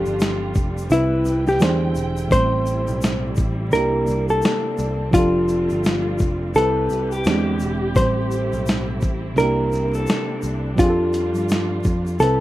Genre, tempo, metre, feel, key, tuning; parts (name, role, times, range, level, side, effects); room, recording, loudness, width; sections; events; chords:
lo-fi hip hop; 85 BPM; 4/4; swing 61% on 16ths; A4 = 439 Hz
hollow-body jazz guitar; melody; 0.0-12.4 s; E4 to C5; -21 LUFS; left 1 dB; low-pass filter
bright reed electric piano; accompaniment; 0.0-12.4 s; A2 to B#4; -24 LUFS; right 2 dB; cassette tape, low-pass filter
warm studio string section; sustained chords; 0.0-12.4 s; D3 to G5; -30 LUFS; equal; low-pass filter
picked electric bass; bass; 0.0-12.4 s; E1 to G2; -26 LUFS; equal
tube shaker; percussion; 0.1-12.4 s; -43 LUFS; left 8 dB
dusty soul sampler-style drum kit; drums; 0.2-12.4 s; finger snaps, hi-hat, kick drum, shaker, snare drum; -22 LUFS; equal
light reverb; rough home demo mix, vinyl crackle; -18 LUFS; side -15 dB against mid
0.0-12.4 A section
0.0 F69; 0.9 Cmaj7; 1.6 E7alt; 2.3 Am9; 3.7 C13; 5.1 F69; 6.5 Cmaj7; 7.3 E7alt; 8.0 Am9; 9.4 C13; 10.8 F69